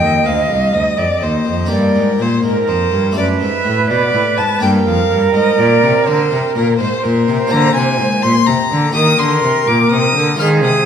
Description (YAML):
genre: classical, baroque-style sonata movement with continuo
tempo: 83 BPM (dotted quarters)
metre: 12/8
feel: straight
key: Eb major from 7.5 s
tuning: A4 = 440 Hz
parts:
  - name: rich violin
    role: melody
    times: 0.0-10.9 s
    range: Bb4 to F6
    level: -17 LUFS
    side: left 5 dB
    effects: none
  - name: bright concert flute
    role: second line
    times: 0.0-10.9 s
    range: Ab4 to Eb5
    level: -17 LUFS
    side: right 5 dB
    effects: none
  - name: harpsichord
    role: accompaniment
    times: 0.0-10.9 s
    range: C2 to C5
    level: -19 LUFS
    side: left 3 dB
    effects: none
  - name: rich cello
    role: bass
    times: 0.0-10.9 s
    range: C2 to Eb3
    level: -18 LUFS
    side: equal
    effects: none
room: wet scoring stage reverb, RT60 1.6 s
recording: minimal, uncompressed stereo recording, vinyl crackle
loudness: -12 LUFS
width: side -8 dB against mid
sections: 0.0-10.9 A section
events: none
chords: 0.0 Cm; 1.7 Gm; 3.2 D/F#; 4.6 Gm; 7.5 Bb7; 8.9 Eb